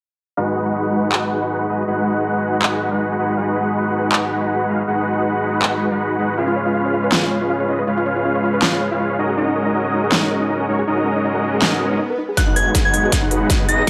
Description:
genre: future bass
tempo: 160 BPM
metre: 4/4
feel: swing 55% on 16ths, half-time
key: unclear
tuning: A4 = 440 Hz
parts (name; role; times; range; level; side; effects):
- dense compressed supersaw; riff; 0.4-13.9 s; G#3 to F#5; -21 LUFS; equal; sidechain pumping, low-pass filter, tape echo
- big-room dance drum kit; drums; 1.1-13.9 s; handclaps, hi-hat, snare drum; -21 LUFS; equal; high-pass filter on snare, small room ambience, high-pass filter on hats
- soft round pluck; arpeggios; 6.4-13.9 s; D#4 to C#5; -26 LUFS; equal; chorus, sidechain pumping, tape echo
- swell and riser; sound effects; 11.7-13.9 s; none; -32 LUFS; equal; none
- soft synth bell; melody; 12.4-13.9 s; F#6 to A#6; -22 LUFS; equal; chorus, phaser, sidechain pumping, dub echo
- detuned saw bass; bass; 12.4-13.9 s; B1; -28 LUFS; equal; chorus, sidechain pumping, high-pass filter
- electronic kick drum; drums; 12.4-13.9 s; none; -20 LUFS; equal; small room ambience
room: moderate digital room reverb, RT60 0.9 s, digital ambience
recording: none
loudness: -19 LUFS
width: mono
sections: 0.4-12.4 A section; 12.4-13.9 B section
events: swell 11.7-12.4; build-up 12.4-13.9; drum fill 12.4-13.9; filter sweep on supersaw synth 12.4-13.9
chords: 0.4 B6; 3.4 G#m7; 6.4 C#7; 9.2 F#69; 12.4 B6

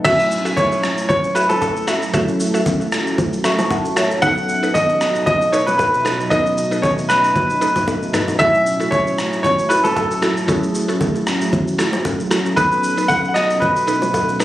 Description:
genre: amapiano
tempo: 115 BPM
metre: 4/4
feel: swing 55% on 16ths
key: F# dorian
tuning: A4 = 439 Hz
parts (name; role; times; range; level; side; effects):
- clear grand piano; melody; 0.0-14.4 s; A4 to F#5; -17 LUFS; equal; tape echo
- tine electric piano; accompaniment; 0.0-14.4 s; F#3 to C#6; -22 LUFS; equal; medium stereo tremolo
- mallet-like synth pluck; stabs; 0.0-14.4 s; D#4 to E5; -24 LUFS; equal; chorus, tape echo
- deep dark ambient pad; sustained chords; 0.1-14.4 s; F#2 to F#4; -28 LUFS; right 1 dB; chorus, built-in reverb
- boom bap sampler-style drum kit; drums; 0.1-14.4 s; crash cymbal, kick drum, rim click, shaker, toms; -25 LUFS; equal; none
- congas and bongos; percussion; 0.1-14.3 s; none; -23 LUFS; left 1 dB; none
room: light reverb, digital ambience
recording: recorded on a phone in the room, studio reverb, compression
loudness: -15 LUFS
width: side -14 dB against mid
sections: 0.1-14.4 A section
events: tine electric piano fill 3.2-4.2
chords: 0.1 F#m7; 4.2 B7; 8.4 F#m7; 12.6 B7

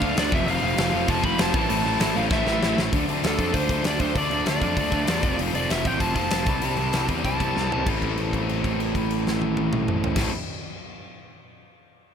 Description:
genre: punk rock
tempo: 194 BPM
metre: 4/4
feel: straight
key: A minor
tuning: A4 = 439 Hz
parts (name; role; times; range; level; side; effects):
- bluesy overdriven lead guitar; melody; 0.0-7.9 s; A4 to B5; -28 LUFS; equal; distortion, digital delay
- distorted electric guitar; riff; 0.0-10.3 s; A2 to F4; -28 LUFS; left 15 dB; distortion
- distorted electric guitar; riff; 0.0-10.3 s; F2 to D4; -29 LUFS; right 15 dB; distortion
- distorted electric guitar; riff; 0.0-2.8 s; F2 to D4; -30 LUFS; right 2 dB; distortion
- fuzz picked electric bass; bass; 0.0-10.3 s; F1 to F2; -28 LUFS; equal; overdrive
- big rock drum kit; drums; 0.0-10.2 s; crash cymbal, hi-hat, kick drum, snare drum, toms; -27 LUFS; equal; none
room: little or no reverb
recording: none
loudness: -21 LUFS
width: side -7 dB against mid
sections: 0.0-2.9 A section; 2.9-7.9 B section; 7.9-10.3 C section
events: drum fill 2.3-2.9, 7.5-7.9; lead electric guitar solo 2.9-7.9; held note 7.9-10.2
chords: 0.3 F; 1.5 Am; 2.9 Dm; 5.2 F; 6.5 C; 7.9 Am

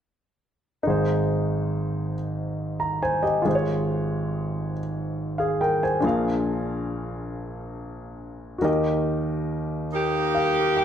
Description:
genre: gospel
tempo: 46 BPM (dotted quarters)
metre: 6/8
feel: straight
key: Ab major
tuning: A4 = 439 Hz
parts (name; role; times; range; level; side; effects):
- warm grand piano; accompaniment; 0.8-10.8 s; Ab1 to Bb5; -24 LUFS; equal; none
- edgy saxophone section; melody; 9.9-10.8 s; Bb3 to G4; -21 LUFS; equal; none
room: moderate large studio reverb, RT60 1.0 s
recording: none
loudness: -23 LUFS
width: side -9 dB against mid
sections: 0.9-10.8 A section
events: grand piano fill 9.9-10.8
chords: 0.9 Ab; 3.5 Db/Ab; 6.0 Bb7; 8.6 Eb

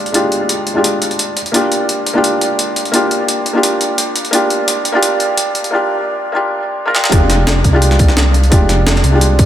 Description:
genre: liquid drum and bass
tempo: 172 BPM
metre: 4/4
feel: straight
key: F dorian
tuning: A4 = 440 Hz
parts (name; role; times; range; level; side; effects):
- felt-muted upright piano; accompaniment; 0.0-9.5 s; Ab3 to Bb4; -14 LUFS; equal; low-pass filter, digital delay
- jungle sampler-style drum kit; drums; 0.1-9.5 s; hi-hat, snare drum; -17 LUFS; equal; overdrive, high-pass filter on hats, high-pass filter on snare, high-pass filter on room
- dark detuned saw bass; bass; 7.1-9.5 s; F1 to C2; -12 LUFS; equal; none
- electronic kick drum; drums; 7.1-9.5 s; none; -11 LUFS; equal; none
room: moderate huge ambient reverb, RT60 4.4 s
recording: high-pass filter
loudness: -11 LUFS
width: side -11 dB against mid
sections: 0.0-7.1 A section; 7.1-9.5 B section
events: build-up 0.0-7.1; filter sweep on felt piano 0.0-7.1; drum fill 6.9; drop 7.1-9.5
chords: 0.0 Fm69; 1.4 Gm7; 7.1 Fm69

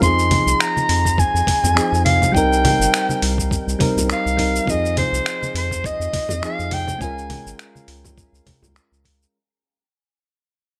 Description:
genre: sunset chillout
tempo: 103 BPM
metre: 4/4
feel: swing 56% on 16ths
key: F minor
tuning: A4 = 438 Hz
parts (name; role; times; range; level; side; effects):
- breathy soprano saxophone; melody; 0.0-7.6 s; C5 to C6; -23 LUFS; equal; delay
- soft electric-piano-like synth keys; accompaniment; 0.0-9.4 s; F3 to Bb4; -26 LUFS; equal; chorus, tape echo
- round analog bass; bass; 0.0-9.3 s; G1 to F2; -25 LUFS; equal; none
- dusty soul sampler-style drum kit; drums; 0.0-9.3 s; congas, finger snaps, hi-hat, shaker; -25 LUFS; equal; small room ambience
- electronic kick drum; drums; 0.0-9.2 s; none; -25 LUFS; equal; small room ambience
- congas; percussion; 0.3-8.7 s; none; -31 LUFS; equal; none
room: light reverb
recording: none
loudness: -19 LUFS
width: mono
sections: 0.0-9.3 A section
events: fade-out 3.1-9.3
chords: 0.0 Fm7; 2.4 Cm7; 4.7 Fm7; 7.0 Db6

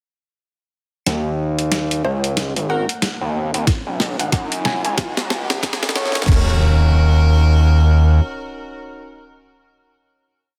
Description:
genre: glitch hop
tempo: 92 BPM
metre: 4/4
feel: swing 60% on 16ths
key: Eb minor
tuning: A4 = 437 Hz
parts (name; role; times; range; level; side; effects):
- gritty driven synth bass; bass; 1.1-8.2 s; Ab1 to Gb2; -18 LUFS; equal; overdrive, high-pass filter
- boom bap sampler-style drum kit; drums; 1.1-6.4 s; crash cymbal, hi-hat, snare drum; -25 LUFS; equal; studio reverb
- riser and impact; sound effects; 2.6-9.3 s; none; -32 LUFS; equal; none
- woody wave-folded pluck; melody; 2.0-4.9 s; Db5 to Ab5; -30 LUFS; equal; chorus, delay
- warm horn section; stabs; 2.7-9.3 s; Db4 to Db5; -28 LUFS; equal; sidechain pumping, delay
- electronic kick drum; drums; 3.7-6.4 s; none; -19 LUFS; equal; studio reverb
room: light reverb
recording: dense, heavily limited modern master, high-pass filter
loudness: -18 LUFS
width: mono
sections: 1.1-6.3 build; 6.3-8.9 final chord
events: build-up 1.1-6.3; drum fill 1.1-6.3; filter sweep 1.1-6.3; riser 2.6-6.3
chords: 1.1 Ebm7; 3.7 Dbsus2; 6.3 Ebm7

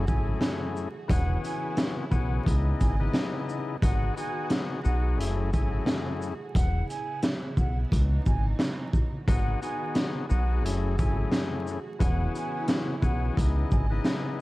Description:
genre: hip hop, boom-bap hip-hop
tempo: 88 BPM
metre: 4/4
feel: swing 61% on 16ths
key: C# minor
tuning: A4 = 436 Hz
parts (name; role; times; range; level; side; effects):
- overdriven tonewheel organ; accompaniment; 0.0-14.4 s; F#2 to G#4; -32 LUFS; left 4 dB; cassette tape, plate reverb
- warm studio string section; sustained chords; 0.0-14.4 s; C#3 to D#5; -39 LUFS; right 4 dB; none
- deep dub fingered electric bass; bass; 0.0-14.0 s; E1 to C#2; -26 LUFS; equal; none
- mellow concert flute; melody; 0.1-13.9 s; F#5 to G#5; -38 LUFS; right 3 dB; tape echo, plate reverb
- crunchy breakbeat drum kit; drums; 0.1-14.3 s; hi-hat, kick drum, shaker, snare drum; -28 LUFS; equal; none
room: light reverb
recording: dark, warm production, vinyl crackle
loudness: -25 LUFS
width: side -19 dB against mid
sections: 0.0-14.4 A section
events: none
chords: 0.0 F#m9; 1.1 E6; 2.5 C#m9; 3.8 G#m7; 5.2 F#m9; 6.6 E6; 7.9 C#m9; 9.3 G#m7; 10.6 F#m9; 12.0 E6; 13.4 C#m9

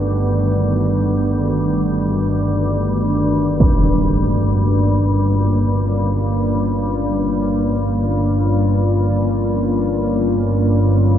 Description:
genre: dark ambient drone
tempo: free time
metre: none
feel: none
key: unclear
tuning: A4 = 440 Hz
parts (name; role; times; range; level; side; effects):
- deep dark ambient pad; sustained chords; 0.0-11.2 s; Eb3 to Gb4; -21 LUFS; equal; chorus, built-in reverb
- organ-like drone; drone; 0.0-11.2 s; G1 to G2; -16 LUFS; equal; ensemble chorus, built-in reverb
- impact; percussion; 3.6-3.8 s; none; -21 LUFS; equal; low-pass filter on sfx
room: wet cathedral reverb, RT60 6.3 s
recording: in a vast, echoing space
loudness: -15 LUFS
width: side -10 dB against mid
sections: 0.0-11.2 A section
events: fade-in on ambient pad 0.0-11.2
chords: 0.0 Ebm; 3.6 Bbm

